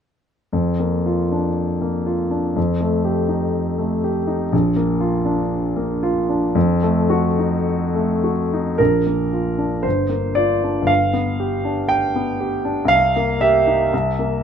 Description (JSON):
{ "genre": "classical, romantic character piece for solo piano", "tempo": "51-62 BPM", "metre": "2/4", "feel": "rubato", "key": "Bb major", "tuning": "A4 = 437 Hz", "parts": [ { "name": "warm concert grand piano", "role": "solo", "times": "0.5-14.4 s", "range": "G1 to G5", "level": "-17 LUFS", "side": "equal", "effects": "none" } ], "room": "light reverb", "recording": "minimal, uncompressed stereo recording", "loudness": "-17 LUFS", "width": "side -8 dB against mid", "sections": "0.5-8.8 A section; 8.8-14.4 B section", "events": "none", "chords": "0.5 Bb/F; 2.6 F9; 4.5 Bb; 6.6 F7b9; 8.8 Bb; 9.8 Gm7; 10.9 G7; 12.9 Cm7; 13.9 C7", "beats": "| 0.53 1.58 | 2.57 3.55 | 4.52 5.51 | 6.55 7.65 | 8.79 9.85 | 10.89 11.92 | 12.92 13.92" }